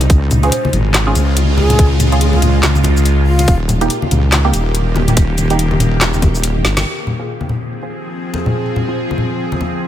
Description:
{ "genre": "deep dubstep", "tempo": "142 BPM", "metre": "4/4", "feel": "swing 58% on 16ths, half-time", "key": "F minor", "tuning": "A4 = 441 Hz", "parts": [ { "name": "bowed-like drone", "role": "sustained chords", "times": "0.0-9.9 s", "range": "Db3 to Ab4", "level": "-20 LUFS", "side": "right 1 dB", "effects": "built-in reverb, phaser" }, { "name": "wobble bass", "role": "bass", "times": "0.0-6.8 s", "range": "Eb1 to Db2", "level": "-14 LUFS", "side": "equal", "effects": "chorus" }, { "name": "garage drum kit", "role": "drums", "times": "0.0-6.8 s", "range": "handclaps, hi-hat, shaker, snare drum", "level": "-18 LUFS", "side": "left 1 dB", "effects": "none" }, { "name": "congas", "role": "percussion", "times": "0.0-9.7 s", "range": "none", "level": "-20 LUFS", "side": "left 2 dB", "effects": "none" }, { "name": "electronic kick drum", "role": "drums", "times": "0.1-6.3 s", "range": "none", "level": "-11 LUFS", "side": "equal", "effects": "none" }, { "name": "breathy ney", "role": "melody", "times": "0.4-3.5 s", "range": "F4 to C5", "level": "-23 LUFS", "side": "equal", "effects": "dub echo" }, { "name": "filtered dub chord stab", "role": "stabs", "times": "0.4-9.0 s", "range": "Bb3 to Ab4", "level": "-23 LUFS", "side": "right 4 dB", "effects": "phaser, dub echo" } ], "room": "little or no reverb", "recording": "none", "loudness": "-12 LUFS", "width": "side -11 dB against mid", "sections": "0.0-6.9 A section; 6.9-9.9 B section", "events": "drop 0.0-6.9; drum fill 6.6; band accent 6.8", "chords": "0.1 Db; 3.5 Eb; 6.9 Fm" }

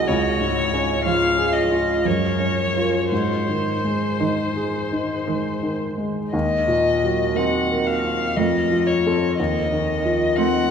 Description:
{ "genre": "classical, slow romantic movement for piano trio", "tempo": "55-63 BPM", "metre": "3/4", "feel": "rubato", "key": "unclear", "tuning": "A4 = 441 Hz", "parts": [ { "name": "rich violin", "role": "melody", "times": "0.0-10.7 s", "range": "C5 to Gb5", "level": "-23 LUFS", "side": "left 3 dB", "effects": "none" }, { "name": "clear grand piano", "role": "accompaniment", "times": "0.0-10.7 s", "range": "C2 to Bb4", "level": "-21 LUFS", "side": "equal", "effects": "none" }, { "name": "rich cello", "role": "second line", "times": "1.1-10.7 s", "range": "Eb3 to Bb3", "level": "-30 LUFS", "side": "right 4 dB", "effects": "none" } ], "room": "wet cathedral reverb, RT60 4.6 s", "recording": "recorded in a church or concert hall", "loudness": "-18 LUFS", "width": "side -7 dB against mid", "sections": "0.0-10.7 A section", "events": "none", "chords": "0.1 Db; 2.1 Gbmaj7; 3.1 Ab; 6.3 Cm7b5/Eb; 8.4 F; 9.4 F7/Eb" }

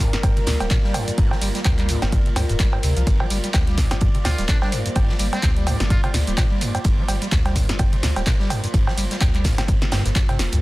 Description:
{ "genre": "acid house", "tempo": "127 BPM", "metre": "4/4", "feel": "swing 57% on 16ths", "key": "G minor", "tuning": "A4 = 441 Hz", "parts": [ { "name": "warm analog pad", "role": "sustained chords", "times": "0.0-10.6 s", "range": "G3 to D5", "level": "-34 LUFS", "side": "equal", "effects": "lush chorus, sidechain pumping" }, { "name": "overdriven acid bass", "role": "riff", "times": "0.0-10.6 s", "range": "G1 to G3", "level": "-26 LUFS", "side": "equal", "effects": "distortion, tube saturation, wide subtle chorus, tape echo" }, { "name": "round analog bass", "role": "bass", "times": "0.0-10.6 s", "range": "D1 to G2", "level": "-24 LUFS", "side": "equal", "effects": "sidechain pumping" }, { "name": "electronic kick drum", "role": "drums", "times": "0.0-10.3 s", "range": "none", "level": "-20 LUFS", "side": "equal", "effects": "none" }, { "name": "punchy analog drum machine", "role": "drums", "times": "0.0-10.6 s", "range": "cowbell, handclaps, hi-hat, shaker, snare drum", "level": "-26 LUFS", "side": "right 1 dB", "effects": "none" }, { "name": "warbly tape-like pad", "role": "texture", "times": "0.0-10.6 s", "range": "Bb3 to D5", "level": "-33 LUFS", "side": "equal", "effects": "chorus, built-in reverb, phaser, sidechain pumping" }, { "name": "raw garage drum kit", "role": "drums", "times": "0.1-10.6 s", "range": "ride cymbal, snare drum", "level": "-35 LUFS", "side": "right 2 dB", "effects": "sidechain pumping on cymbals, high-pass filter on cymbals, high-pass filter on snare, high-pass filter on room" }, { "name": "trumpet with metal mute", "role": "melody", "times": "4.3-6.1 s", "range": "C4 to F4", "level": "-32 LUFS", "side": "equal", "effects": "analog delay" } ], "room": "little or no reverb", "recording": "dense, heavily limited modern master", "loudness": "-18 LUFS", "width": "side -19 dB against mid", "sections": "0.0-10.6 A section", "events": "drop 0.0-10.6", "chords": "0.0 Gm7" }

